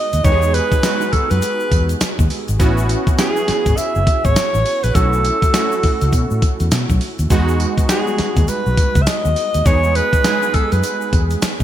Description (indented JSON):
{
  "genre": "R&B, new jack swing",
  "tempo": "102 BPM",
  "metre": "4/4",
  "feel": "swing 61% on 16ths",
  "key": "E major",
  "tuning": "A4 = 440 Hz",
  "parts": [
    { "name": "breathy alto saxophone", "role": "melody", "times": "0.0-11.3 s", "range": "G#4 to E5", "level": "-19 LUFS", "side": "right 1 dB", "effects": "ping-pong delay" },
    { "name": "warm analog keys", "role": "accompaniment", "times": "0.0-11.6 s", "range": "G3 to G#4", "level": "-22 LUFS", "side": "right 3 dB", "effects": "chorus" },
    { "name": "vintage muted fingered electric bass", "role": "bass", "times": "0.1-11.6 s", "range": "F#1 to B2", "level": "-18 LUFS", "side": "equal", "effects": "none" },
    { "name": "dusty soul sampler-style drum kit", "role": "drums", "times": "0.1-11.6 s", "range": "hi-hat, kick drum, snare drum, tambourine", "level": "-18 LUFS", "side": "equal", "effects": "gated reverb" },
    { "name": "egg shaker", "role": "percussion", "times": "0.1-11.6 s", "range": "none", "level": "-36 LUFS", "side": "left 10 dB", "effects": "none" }
  ],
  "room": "light reverb, digital ambience",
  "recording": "bright 1980s-style digital production",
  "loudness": "-14 LUFS",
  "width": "side -11 dB against mid",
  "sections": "0.0-11.6 A section",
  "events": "none",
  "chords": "0.0 Emaj7; 2.6 A69; 5.0 B7sus4; 7.3 Emaj7"
}